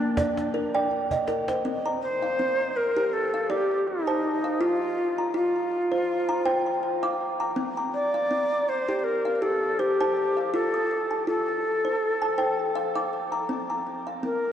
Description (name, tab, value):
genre	world meditative, meditative tuned percussion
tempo	81 BPM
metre	4/4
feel	swing 56% on 16ths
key	C dorian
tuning	A4 = 439 Hz
part	bright low Native American-style wooden flute	melody	0.0-14.5 s	D4 to D5	-26 LUFS	left 1 dB	shimmer reverb, ping-pong delay
part	kalimba	arpeggios	0.0-14.5 s	Bb3 to Eb6	-27 LUFS	equal	shimmer reverb, ping-pong delay
part	cajon	percussion	0.0-1.6 s	none	-36 LUFS	equal	none
room	wet cathedral reverb, RT60 4.8 s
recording	worn, warbling old tape, cassette tape, warbly pitch drift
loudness	-23 LUFS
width	side -9 dB against mid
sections	0.0-1.6 A section; 1.6-14.5 B section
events	drum fill 1.1-1.6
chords	0.0 Bb; 1.6 Cm; 4.6 F5; 7.6 C5; 10.5 F; 13.5 C5